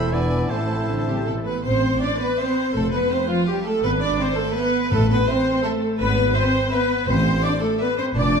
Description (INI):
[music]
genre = quick classical-period movement for symphony orchestra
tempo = 165 BPM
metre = 3/4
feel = straight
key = A minor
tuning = A4 = 440 Hz
[part]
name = rich chamber violin section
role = melody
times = 0.0-8.2 s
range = E5 to B5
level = -38 LUFS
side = right 1 dB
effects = none
[part]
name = bright chamber violin section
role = second line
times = 0.0-8.4 s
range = F4 to D5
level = -29 LUFS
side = right 1 dB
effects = none
[part]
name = bright oboe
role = second line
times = 0.0-1.5 s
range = C5 to D5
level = -35 LUFS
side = right 2 dB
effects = none
[part]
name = clear clarinet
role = second line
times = 0.0-1.4 s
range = E4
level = -31 LUFS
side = left 4 dB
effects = none
[part]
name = mellow hollow silver concert flute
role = second line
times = 0.0-1.4 s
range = E6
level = -37 LUFS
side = equal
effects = none
[part]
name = rich chamber viola section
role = accompaniment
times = 0.0-8.4 s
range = E3 to D5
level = -23 LUFS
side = left 1 dB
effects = none
[part]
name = warm bassoon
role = accompaniment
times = 0.0-1.5 s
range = A3 to B3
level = -31 LUFS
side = right 2 dB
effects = none
[part]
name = mellow French horn section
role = sustained chords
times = 0.0-1.5 s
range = A3 to D4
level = -31 LUFS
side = right 1 dB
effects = none
[part]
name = rich chamber double bass section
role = bass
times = 0.0-8.4 s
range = E1 to A1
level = -24 LUFS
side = right 1 dB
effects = none
[part]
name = warm chamber cello section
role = bass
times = 0.0-8.4 s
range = E2 to D4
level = -25 LUFS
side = right 1 dB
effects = none
[part]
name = timpani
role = percussion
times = 4.9-7.6 s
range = A2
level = -28 LUFS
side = left 2 dB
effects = none
[sound]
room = wet stone room reverb, RT60 1.5 s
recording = dark, warm production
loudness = -18 LUFS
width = side -6 dB against mid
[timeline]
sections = 0.0-1.6 A section; 1.6-8.4 A section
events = none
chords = 0.1 E7; 0.5 Am; 2.7 F; 3.8 E/G# (rootless); 4.9 Am; 6.0 E/G# (rootless); 7.1 Am